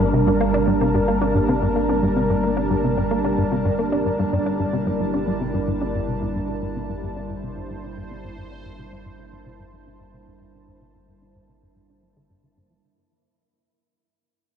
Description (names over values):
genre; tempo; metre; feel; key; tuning
ambient, sequencer-driven space music; 111 BPM; 4/4; straight; G dorian; A4 = 440 Hz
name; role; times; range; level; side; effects
sweeping resonant pad; sustained chords; 0.0-12.8 s; G3 to A5; -23 LUFS; right 1 dB; chorus, shimmer reverb
plucky analog bass; riff; 0.0-12.8 s; G2 to D4; -24 LUFS; equal; analog chorus, analog delay
warm sub bass; bass; 0.0-12.8 s; G1; -32 LUFS; equal; none
wind-like tuned noise texture; texture; 0.0-12.9 s; Bb3 to Bb4; -30 LUFS; left 1 dB; built-in reverb, shimmer reverb
room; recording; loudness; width
wet plate reverb, RT60 3.3 s; dark, warm production; -19 LUFS; side -8 dB against mid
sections
0.0-12.8 A section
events
fade-out 0.0-12.8; filter sweep on analog synth bass 0.0-12.8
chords
0.0 Gm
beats
0.41 0.94 1.49 | 2.03 2.57 3.11 3.65 | 4.19 4.73 5.27 5.81 | 6.35 6.89 7.43 7.97 | 8.51 9.05 9.59 10.13 | 10.68 11.22 11.76 12.30